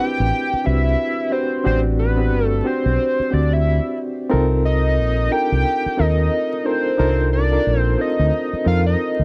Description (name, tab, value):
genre	R&B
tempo	90 BPM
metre	4/4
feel	swing 59% on 16ths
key	unclear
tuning	A4 = 440 Hz
part	hollow square lead	melody	0.0-9.2 s	B4 to G5	-24 LUFS	equal	chorus
part	bright reed electric piano	accompaniment	0.0-9.2 s	C4 to Eb5	-24 LUFS	equal	fast tremolo
part	deep dub fingered electric bass	bass	0.2-9.2 s	G1 to F2	-21 LUFS	equal	none
room	light reverb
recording	dry, close 1970s-style studio recording, vinyl crackle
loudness	-19 LUFS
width	mono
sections	0.0-9.2 A section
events	none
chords	0.0 Am11; 4.3 Cm11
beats	0.31 0.97 | 1.64 2.31 2.98 3.64 | 4.31 4.97 5.64 6.31 | 6.97 7.64 8.31 8.97